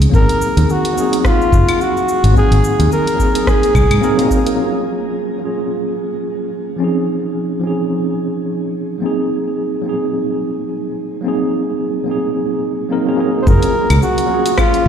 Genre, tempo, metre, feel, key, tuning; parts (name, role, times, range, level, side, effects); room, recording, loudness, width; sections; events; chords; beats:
sunset chillout; 108 BPM; 4/4; swing 58% on 16ths; A4 = 440 Hz
tine electric piano; accompaniment; 0.0-14.9 s; F3 to Bb4; -17 LUFS; right 1 dB; fast stereo tremolo, auto-pan, digital delay, shimmer reverb
fingered electric bass; bass; 0.0-4.0, 13.5-14.9 s; Gb1 to Ab2; -12 LUFS; equal
deep house drum kit; drums; 0.0-4.6, 13.5-14.8 s; cabasa, claves, hi-hat, rim click; -24 LUFS; left 1 dB; overdrive, low-pass filter on perc, low-pass filter on hats, low-pass filter on snare
electronic kick drum; drums; 0.1-4.4, 13.5-14.9 s; -16 LUFS; equal
mellow flugelhorn; melody; 0.2-4.3, 13.4-14.9 s; F4 to C5; -17 LUFS; equal; tape echo, shimmer reverb
moderate lush hall reverb, RT60 1.9 s; played on a big sound system in a bare room, stone room reverb; -14 LUFS; side -8 dB against mid
0.0-4.6 A section; 4.6-13.5 B section; 13.5-14.9 A section
0.1 Ab7; 4.6 Gbmaj9; 6.8 Dbmaj7; 9.0 Ab7; 13.5 Gbmaj9
| 0.13 0.69 1.24 1.80 | 2.35 2.91 3.47 4.02 | 4.58 5.13 5.69 6.24 | 6.80 7.36 7.91 8.47 | 9.02 9.58 10.13 10.69 | 11.24 11.80 12.36 12.91 | 13.47 14.02 14.58